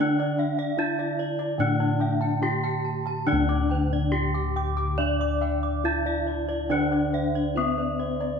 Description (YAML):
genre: Javanese gamelan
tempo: 70-76 BPM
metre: 4/4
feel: straight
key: D slendro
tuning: A4 = 440 Hz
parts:
  - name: gamelan-type bronze metallophone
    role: melody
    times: 0.0-8.4 s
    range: C4-40c to D5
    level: -27 LUFS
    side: left 3 dB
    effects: none
  - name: gamelan-type bronze metallophone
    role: accompaniment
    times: 0.0-8.4 s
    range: D3 to D4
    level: -32 LUFS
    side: right 7 dB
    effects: none
  - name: gamelan-type bronze metallophone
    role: arpeggios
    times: 0.0-8.4 s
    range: C5-40c to D6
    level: -34 LUFS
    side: right 8 dB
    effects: none
  - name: gamelan-type bossed gongs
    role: bass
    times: 0.0-8.4 s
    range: D2 to E4+40c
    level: -28 LUFS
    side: left 2 dB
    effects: none
  - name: gamelan-type bossed gongs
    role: arpeggios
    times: 0.2-8.4 s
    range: C5-40c to D6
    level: -33 LUFS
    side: left 2 dB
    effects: none
room: moderate recital hall reverb, RT60 1.5 s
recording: none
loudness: -23 LUFS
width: side -6 dB against mid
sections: 0.0-3.3 A section; 3.3-8.4 B section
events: none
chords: none